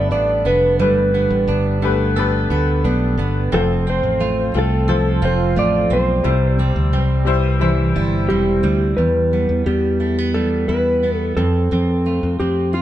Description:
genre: acoustic pop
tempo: 88 BPM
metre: 4/4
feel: straight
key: unclear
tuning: A4 = 440 Hz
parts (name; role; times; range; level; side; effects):
- clean lap steel guitar; melody; 0.0-12.8 s; F4 to D5; -20 LUFS; right 1 dB; tape echo
- clear upright piano; accompaniment; 0.0-9.0 s; G3 to C5; -24 LUFS; left 7 dB; none
- fingerpicked steel-string acoustic guitar; accompaniment; 0.0-12.8 s; E2 to A4; -22 LUFS; right 2 dB; none
- direct-recorded clean electric guitar; arpeggios; 0.0-12.8 s; G3 to A4; -28 LUFS; right 4 dB; vibrato effect
- fingered electric bass; bass; 0.0-12.8 s; E1 to F2; -19 LUFS; equal; none
room: light reverb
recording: band playing live in one room, nothing above 10.3 kHz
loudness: -15 LUFS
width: side -12 dB against mid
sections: 0.0-9.0 A section; 9.0-12.8 B section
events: none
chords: 0.0 Gadd9; 3.5 F; 6.3 C; 9.0 Em; 11.4 F

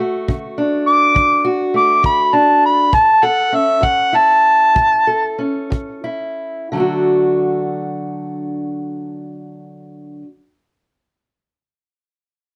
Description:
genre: acoustic country blues, solo or duo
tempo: 59-68 BPM (dotted quarters)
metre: 12/8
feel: straight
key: D major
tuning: A4 = 439 Hz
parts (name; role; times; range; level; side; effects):
- fingerpicked steel-string acoustic guitar; accompaniment; 0.0-10.3 s; A2 to A4; -22 LUFS; equal; slapback echo
- kick drum; drums; 0.3-5.9 s; none; -22 LUFS; equal; none
- overdriven harmonica; melody; 0.9-5.4 s; E5 to D6; -14 LUFS; equal; none
room: little or no reverb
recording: recorded outdoors, with no room sound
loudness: -15 LUFS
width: mono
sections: 0.0-6.7 A section; 6.7-10.8 B section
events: harmonica solo 0.0-6.7; slowing down 1.8-6.7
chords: 0.0 D; 2.9 A; 6.7 D

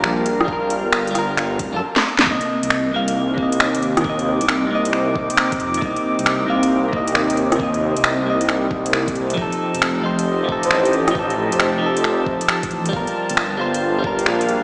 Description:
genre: future garage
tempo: 135 BPM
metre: 4/4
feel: swing 66% on 16ths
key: C dorian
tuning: A4 = 440 Hz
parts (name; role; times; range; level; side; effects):
- clean electric guitar; accompaniment; 0.0-14.6 s; C3 to F5; -22 LUFS; equal; spring reverb, sidechain pumping, dub echo
- warbly tape-like pad; sustained chords; 0.0-14.6 s; C3 to D6; -24 LUFS; equal; chorus, built-in reverb, sidechain pumping
- swelling detuned saw bass; bass; 0.0-14.6 s; D1 to G2; -22 LUFS; equal; sidechain pumping
- garage drum kit; drums; 0.0-14.6 s; finger snaps, hi-hat, rim click, snare drum; -20 LUFS; equal; none
- electronic kick drum; drums; 0.5-14.2 s; none; -28 LUFS; equal; none
- breathy flute-like synth lead; melody; 10.6-11.7 s; C5; -24 LUFS; equal; chorus, dub echo
room: moderate huge ambient reverb, RT60 3.9 s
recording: played on a big sound system in a bare room, stone room reverb, small speaker sound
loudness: -16 LUFS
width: side -39 dB against mid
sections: 0.0-2.3 A section; 2.3-14.6 B section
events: drum fill 1.9-2.3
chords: 0.0 Gm7; 2.3 Cm7; 9.4 F7; 12.9 Gm7

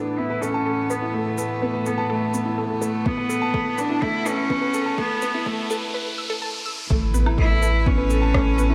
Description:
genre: piano and strings electronica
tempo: 125 BPM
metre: 4/4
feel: straight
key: A major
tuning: A4 = 440 Hz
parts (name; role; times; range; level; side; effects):
- clear cello; melody; 0.0-8.7 s; A3 to E4; -27 LUFS; equal; low-pass filter
- warm string quartet; sustained chords; 0.0-8.7 s; A2 to B4; -34 LUFS; equal; sidechain pumping
- warm grand piano; riff; 0.0-8.7 s; A3 to A5; -29 LUFS; equal; none
- riser and impact; sound effects; 2.6-8.7 s; none; -35 LUFS; equal; none
- unison pluck; arpeggios; 0.2-8.6 s; A4 to E6; -36 LUFS; equal; sidechain pumping, tape echo
- electronic shaker, woodblock and rim click; drums; 0.4-8.7 s; none; -33 LUFS; equal; none
- electronic kick drum; drums; 3.1-8.4 s; none; -26 LUFS; equal; none
- round analog bass; bass; 6.9-8.7 s; A1; -23 LUFS; equal; sidechain pumping
room: moderate lush hall reverb, RT60 1.7 s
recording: high-pass filter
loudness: -23 LUFS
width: mono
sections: 0.0-6.9 A section; 6.9-8.7 B section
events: build-up 0.0-6.9; filter sweep on synth arpeggio sound 0.0-6.9; filter sweep 0.0-6.9; riser 2.6-6.9; break 5.9-6.9; drop 6.9-8.7; impact 6.9-8.7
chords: 0.0 Asus2

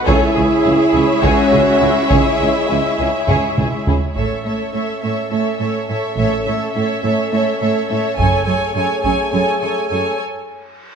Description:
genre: cinematic, epic orchestral film score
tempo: 208 BPM (eighths)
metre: 7/8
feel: straight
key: unclear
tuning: A4 = 441 Hz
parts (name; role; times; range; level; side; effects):
- rich chamber violin section; melody; 0.0-10.2 s; E5 to G#5; -22 LUFS; left 1 dB; none
- clear symphonic viola section; accompaniment; 0.0-10.2 s; E4 to A4; -24 LUFS; right 3 dB; none
- rich symphonic string section; sustained chords; 0.0-4.2 s; G#3 to C#5; -21 LUFS; equal; none
- warm symphonic violin section; second line; 0.1-10.2 s; E4 to C#5; -23 LUFS; left 1 dB; none
- clear French horn section; sustained chords; 0.1-10.2 s; G#3 to A4; -21 LUFS; left 2 dB; none
- dark symphonic cello section; bass; 0.1-10.0 s; F#2 to C#3; -22 LUFS; right 5 dB; none
- rich studio double bass section; bass; 0.1-8.4 s; F#1 to C#2; -24 LUFS; right 4 dB; none
- warm tuba; bass; 0.1-4.0 s; C#2; -23 LUFS; right 4 dB; none
- solo taiko drums; drums; 0.1-9.3 s; none; -20 LUFS; equal; none
- reverse cymbal; sound effects; 10.5-11.0 s; none; -40 LUFS; right 1 dB; none
room: wet scoring stage reverb, RT60 1.6 s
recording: none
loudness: -14 LUFS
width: side -6 dB against mid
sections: 0.0-4.2 A section; 4.2-11.0 B section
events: drum fill 3.3-4.2; break 10.2-11.0; reverse cymbal 10.5-11.0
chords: 0.1 C#m; 4.2 A; 8.2 F#madd9

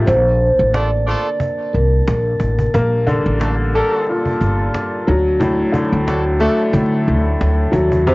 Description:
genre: hip hop, boom-bap hip-hop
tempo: 90 BPM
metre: 4/4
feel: swing 54% on 16ths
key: unclear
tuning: A4 = 440 Hz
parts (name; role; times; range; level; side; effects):
- clear upright piano; accompaniment; 0.0-8.1 s; A2 to A4; -17 LUFS; left 1 dB; high-pass filter, low-pass filter, cassette tape
- percussive tonewheel organ; sustained chords; 0.0-8.1 s; D3 to A5; -29 LUFS; right 1 dB; overdrive, stopped rotary speaker, high-pass filter, low-pass filter, cassette tape
- upright bass; bass; 0.0-8.1 s; G1 to D3; -17 LUFS; equal; none
- vibraphone with soft mallets; melody; 0.1-2.7, 8.1 s; Bb4 to D5; -19 LUFS; right 1 dB; high-pass filter, low-pass filter, cassette tape, analog delay
- cajon; drums; 0.1-8.1 s; none; -23 LUFS; equal; cassette tape
- warm horn section; stabs; 0.7-6.6 s; A3 to Bb4; -26 LUFS; right 1 dB; high-pass filter, low-pass filter, cassette tape, analog delay
room: little or no reverb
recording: home recording on cassette, vinyl crackle, nothing above 7.7 kHz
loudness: -14 LUFS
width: side -23 dB against mid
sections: 0.0-8.1 A section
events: break 0.1-2.7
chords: 0.1 Bbmaj7; 2.7 Gmadd9; 5.1 D

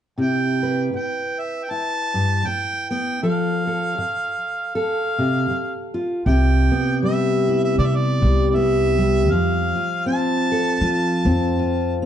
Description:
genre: folk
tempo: 79 BPM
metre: 4/4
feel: swing 58% on 8ths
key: C major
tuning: A4 = 440 Hz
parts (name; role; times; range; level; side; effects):
- warm harmonica; melody; 0.2-12.0 s; D5 to A5; -24 LUFS; right 1 dB; none
- fingerpicked steel-string acoustic guitar; accompaniment; 0.2-12.1 s; G2 to B4; -21 LUFS; equal; none
- upright bass; bass; 6.3-12.1 s; C2 to F3; -20 LUFS; equal; none
room: light reverb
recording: dark, warm production, nothing above 10.6 kHz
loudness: -18 LUFS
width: side -10 dB against mid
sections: 0.2-6.3 A section; 6.3-12.1 B section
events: none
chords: 0.2 Cmaj7; 3.2 F; 6.3 Cmaj7; 9.3 F

